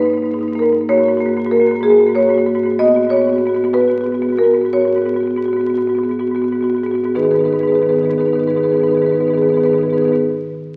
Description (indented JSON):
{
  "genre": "classical, contemporary piece for solo marimba",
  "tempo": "44-65 BPM (dotted quarters)",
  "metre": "6/8",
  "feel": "rubato",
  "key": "G# minor",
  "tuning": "A4 = 440 Hz",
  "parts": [
    { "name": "marimba with medium mallets", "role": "solo", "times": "0.0-10.2 s", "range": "G#2 to D#5", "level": "-16 LUFS", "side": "equal", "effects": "none" }
  ],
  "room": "wet recital hall reverb, RT60 1.5 s",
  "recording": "very old 78 rpm record, vinyl crackle",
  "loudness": "-16 LUFS",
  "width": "mono",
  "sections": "0.0-7.2 A section; 7.2-10.8 B section",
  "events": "slowing down 1.8-7.2",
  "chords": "0.0 G#madd9; 0.9 F#add9/G#; 2.8 G#m7; 7.2 G#m"
}